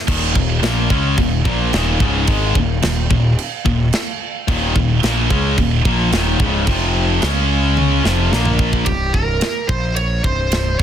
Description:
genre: heavy metal.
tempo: 109 BPM.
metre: 4/4.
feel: straight.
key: unclear.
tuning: A4 = 440 Hz.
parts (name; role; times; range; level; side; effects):
heavy high-gain guitar; riff; 0.1-8.9 s; Db2 to Db4; -22 LUFS; right 11 dB; distortion.
high-gain distorted guitar; riff; 0.1-8.9 s; Db2 to Db4; -20 LUFS; left 8 dB; distortion.
tight distorted guitar; riff; 0.1-8.9 s; Db2 to Db4; -24 LUFS; equal; distortion.
fuzz picked electric bass; bass; 0.1-10.8 s; C1 to Db2; -19 LUFS; equal; overdrive.
tight metal drum kit; drums; 0.1-10.8 s; crash cymbal, kick drum, ride cymbal, snare drum, toms; -20 LUFS; right 1 dB; soft clipping on kick, soft clipping on snare.
high-gain lead guitar; melody; 8.9-10.8 s; G4 to Eb5; -21 LUFS; right 2 dB; distortion.
room: little or no reverb.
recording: dense, heavily limited modern master.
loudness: -14 LUFS.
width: side -9 dB against mid.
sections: 0.0-8.9 A section; 8.9-10.8 B section.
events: drum fill 7.8-8.9.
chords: 0.1 Eb5; 6.7 F5; 7.2 Db5; 8.0 F5; 8.3 Bb5; 8.9 Gmadd11/C; 9.7 Bbmadd9; 10.2 N.C..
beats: | 0.08 0.63 1.18 1.73 | 2.28 2.83 3.38 3.93 | 4.48 5.03 5.57 6.12 | 6.67 7.22 7.77 8.32 | 8.87 9.42 9.97 10.52.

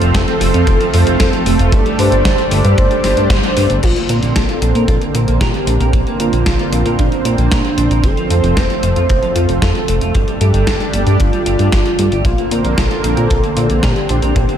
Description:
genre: synthwave.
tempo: 114 BPM.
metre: 4/4.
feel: straight.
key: Bb major.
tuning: A4 = 440 Hz.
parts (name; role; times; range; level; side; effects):
analog string pad; sustained chords; 0.0-14.6 s; D3 to D4; -19 LUFS; right 1 dB; ensemble chorus, sidechain pumping.
clean electric guitar; riff; 0.0-14.6 s; F3 to Bb4; -26 LUFS; right 2 dB; wide subtle chorus, ping-pong delay.
mellow synth brass; stabs; 0.0-3.8 s; A3 to C5; -23 LUFS; right 2 dB; chorus, analog delay.
chorused synth bass; bass; 0.0-14.5 s; F1 to Bb2; -15 LUFS; equal; sidechain pumping.
gated 80s digital drum machine; drums; 0.0-14.6 s; crash cymbal, hi-hat, snare drum; -22 LUFS; left 1 dB; gated reverb, gated reverb snare.
warm velvety synth lead; melody; 0.1-14.6 s; D4 to C5; -20 LUFS; right 1 dB; chorus, analog delay.
kick drum; drums; 0.1-14.5 s; none; -18 LUFS; equal; none.
room: moderate lush hall reverb, RT60 1.9 s, digital ambience.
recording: dreamy mix soaked in reverb.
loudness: -11 LUFS.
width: side -9 dB against mid.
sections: 0.0-3.8 A section; 3.8-14.6 B section.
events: band accent 3.3.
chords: 0.0 F; 1.7 Gsus2; 3.8 Bbadd9; 8.0 F; 10.1 Gsus2; 12.3 Bbadd9.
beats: 0.15 0.67 1.20 | 1.73 2.25 2.78 3.31 | 3.83 4.36 4.88 5.41 | 5.94 6.46 6.99 7.51 | 8.04 8.57 9.09 9.62 | 10.15 10.67 11.20 11.73 | 12.25 12.78 13.30 13.83 | 14.36.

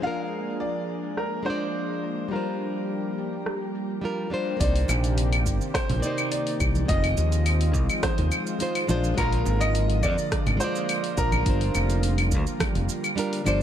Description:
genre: sunset chillout.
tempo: 105 BPM.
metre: 4/4.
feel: straight.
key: C minor.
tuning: A4 = 440 Hz.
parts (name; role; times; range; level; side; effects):
warm grand piano; melody; 0.0-13.6 s; Bb4 to F5; -31 LUFS; equal; ping-pong delay, shimmer reverb.
flamenco guitar; accompaniment; 0.0-13.6 s; D3 to Eb5; -31 LUFS; moving between left 3 dB and right 3 dB; auto-pan, ping-pong delay, shimmer reverb.
lush unison pad; sustained chords; 0.0-13.6 s; C3 to Ab4; -32 LUFS; equal; chorus, shimmer reverb.
deep house drum kit; drums; 0.0-13.6 s; claves, hi-hat, rim click, shaker; -30 LUFS; left 1 dB; overdrive, low-pass filter on perc, low-pass filter on snare, low-pass filter on hats, low-pass filter on room.
fingered electric bass; bass; 4.6-13.6 s; F1 to F2; -24 LUFS; equal; none.
electronic kick drum; drums; 4.6-12.7 s; none; -28 LUFS; equal; overdrive.
congas; percussion; 4.9-13.6 s; none; -33 LUFS; right 4 dB; none.
room: light reverb, digital ambience.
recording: none.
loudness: -23 LUFS.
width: side -10 dB against mid.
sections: 0.0-4.6 A section; 4.6-13.6 B section.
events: none.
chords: 0.0 Bb7; 2.3 Gm7; 4.6 Cm9; 6.9 Fm7; 8.9 Bb7; 11.5 Gm7.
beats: | 0.03 0.60 1.18 1.75 | 2.32 2.89 3.46 4.03 | 4.61 5.18 5.75 6.32 | 6.89 7.46 8.03 8.61 | 9.18 9.75 10.32 10.89 | 11.46 12.03 12.61 13.18.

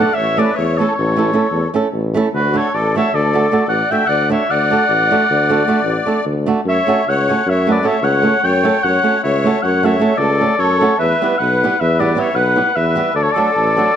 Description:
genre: balkan folk, Balkan wedding band.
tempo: 305 BPM (eighths).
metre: 11/8.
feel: straight.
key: unclear.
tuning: A4 = 440 Hz.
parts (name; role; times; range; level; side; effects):
warm oboe; melody; 0.0-14.0 s; B4 to G5; -17 LUFS; left 1 dB; none.
musette accordion; second line; 0.0-14.0 s; F#4 to E5; -21 LUFS; left 2 dB; none.
flamenco guitar; accompaniment; 0.0-13.9 s; F#3 to A4; -18 LUFS; right 4 dB; none.
warm tuba; bass; 0.2-13.8 s; A1 to F#2; -19 LUFS; left 1 dB; none.
room: moderate recital hall reverb, RT60 1.4 s.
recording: close, detailed microphones.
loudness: -13 LUFS.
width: side -9 dB against mid.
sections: 0.0-6.7 A section; 6.7-14.0 B section.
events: none.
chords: 0.2 A; 2.3 D; 6.7 F#m; 11.0 Em; 13.2 D.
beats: | 0.16 0.36 0.55 0.75 0.95 1.14 1.34 1.54 1.73 1.93 2.13 | 2.32 2.52 2.72 2.91 3.11 3.31 3.50 3.70 3.90 4.09 4.29 | 4.49 4.68 4.88 5.08 5.27 5.47 5.67 5.86 6.06 6.26 6.45 | 6.65 6.85 7.04 7.24 7.44 7.63 7.83 8.03 8.23 8.42 8.62 | 8.82 9.01 9.21 9.41 9.61 9.80 10.00 10.20 10.39 10.59 10.79 | 10.98 11.18 11.38 11.58 11.77 11.97 12.17 12.36 12.56 12.76 12.96 | 13.15 13.35 13.55 13.74 13.94.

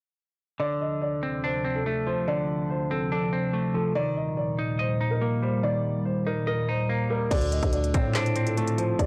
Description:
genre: hip hop, trap.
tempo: 143 BPM.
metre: 4/4.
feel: half-time.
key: D phrygian.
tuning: A4 = 440 Hz.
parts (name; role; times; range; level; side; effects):
dark grand piano; melody; 0.6-9.1 s; A4 to Eb5; -32 LUFS; equal; analog delay.
semi-hollow electric guitar; accompaniment; 0.6-9.1 s; D3 to Eb5; -32 LUFS; equal; none.
glassy FM pad; sustained chords; 0.9-9.1 s; D2 to F4; -32 LUFS; equal; ensemble chorus, built-in reverb.
growling 808-style bass; bass; 7.3-9.1 s; D2 to A2; -29 LUFS; equal; none.
trap drum kit; drums; 7.3-9.1 s; crash cymbal, handclaps, hi-hat, kick drum, snare drum; -30 LUFS; equal; none.
room: light reverb.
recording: dry, gritty hardware recording, transformer saturation, cassette tape.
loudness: -27 LUFS.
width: mono.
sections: 0.6-7.3 A section; 7.3-9.1 B section.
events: none.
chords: 0.6 Dm7; 4.0 Eb; 7.3 Dm7.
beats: | 0.60 1.02 1.44 1.86 | 2.28 2.70 3.12 3.54 | 3.96 4.38 4.79 5.21 | 5.63 6.05 6.47 6.89 | 7.31 7.73 8.15 8.57 | 8.99.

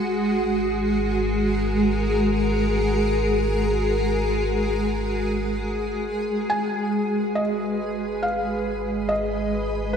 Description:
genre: ambient.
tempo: 70 BPM.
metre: 4/4.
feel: straight.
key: G# dorian.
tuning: A4 = 440 Hz.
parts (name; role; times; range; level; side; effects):
granular cloud pad; sustained chords; 0.0-10.0 s; G#3 to D#5; -22 LUFS; equal; built-in reverb.
round analog bass; bass; 0.0-10.0 s; G#1; -28 LUFS; equal; tube saturation.
felt-muted upright piano; melody; 6.5-10.0 s; B4 to G#5; -27 LUFS; equal; tape echo.
room: wet lush hall reverb, RT60 2.5 s.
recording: cassette tape.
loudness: -21 LUFS.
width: side -7 dB against mid.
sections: 0.0-6.5 A section; 6.5-10.0 B section.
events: none.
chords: 0.0 F#/G#; 6.5 G#m.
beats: 0.52 1.36 2.21 | 3.05 3.91 4.77 5.64 | 6.50 7.37 8.23 9.09 | 9.93.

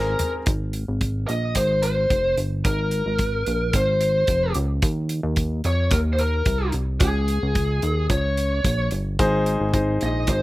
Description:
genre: piano-driven pop.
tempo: 110 BPM.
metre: 4/4.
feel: straight.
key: Ab major.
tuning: A4 = 441 Hz.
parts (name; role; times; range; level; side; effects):
bluesy overdriven lead guitar; melody; 0.0-10.4 s; Ab4 to Eb5; -24 LUFS; equal; distortion, slapback echo.
clear grand piano; accompaniment; 0.0-0.5, 9.2-10.4 s; Ab2 to C5; -23 LUFS; left 1 dB; none.
chorused synth bass; bass; 0.0-10.4 s; F1 to F2; -23 LUFS; equal; none.
modern studio drum kit; drums; 0.2-10.4 s; hi-hat, kick drum, toms; -24 LUFS; equal; none.
room: little or no reverb.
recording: recorded outdoors, with no room sound.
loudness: -20 LUFS.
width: side -18 dB against mid.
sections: 0.5-10.4 A section.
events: none.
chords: 0.5 Ab; 4.8 Eb5; 7.0 Db5; 9.2 Ab.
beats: | 0.47 1.01 1.56 2.10 | 2.65 3.19 3.74 4.29 | 4.83 5.38 5.92 6.47 | 7.01 7.56 8.10 8.65 | 9.19 9.73 10.28.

